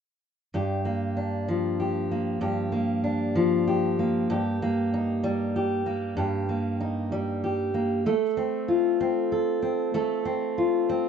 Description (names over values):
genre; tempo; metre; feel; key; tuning
pop; 64 BPM (dotted quarters); 6/8; straight; G minor; A4 = 438 Hz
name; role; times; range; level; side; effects
fingerpicked steel-string acoustic guitar; solo; 0.5-11.1 s; G2 to A4; -24 LUFS; equal; none
room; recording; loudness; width
wet studio reverb, RT60 0.5 s; rough home demo mix, nothing above 8.0 kHz; -24 LUFS; side -7 dB against mid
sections
0.5-11.1 A section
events
none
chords
0.5 Gm7; 4.3 Eb/G; 8.1 F/A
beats
| 0.55 1.49 | 2.43 3.37 | 4.30 5.25 | 6.18 7.12 | 8.06 9.00 | 9.94 10.88